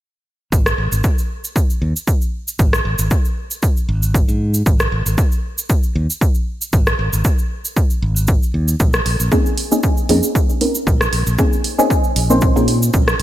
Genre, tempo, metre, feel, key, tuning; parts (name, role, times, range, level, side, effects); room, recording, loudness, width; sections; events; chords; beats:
deep house; 116 BPM; 4/4; swing 54% on 16ths; A4 = 444 Hz
modern bright fingered electric bass; bass; 0.5-13.2 s; Ab1 to Bb2; -18 LUFS; equal; sidechain pumping
electronic kick drum; drums; 0.5-13.0 s; -16 LUFS; equal
cabasa; percussion; 0.5-13.2 s; -25 LUFS; right 3 dB
punchy analog drum machine; drums; 0.7-13.2 s; hi-hat, rim click; -21 LUFS; equal; gated reverb
deep mellow chord stab; stabs; 9.3-12.7 s; Bb3 to C5; -17 LUFS; equal; chorus, cassette tape, sidechain pumping, digital delay
light reverb; bright 1980s-style digital production; -14 LUFS; side -14 dB against mid
0.5-13.2 A section
0.5 Ab5; 8.8 Bbm11
| 0.52 1.04 1.56 2.08 | 2.59 3.11 3.63 4.14 | 4.66 5.18 5.70 6.21 | 6.73 7.25 7.76 8.28 | 8.80 9.32 9.83 10.35 | 10.87 11.38 11.90 12.42 | 12.94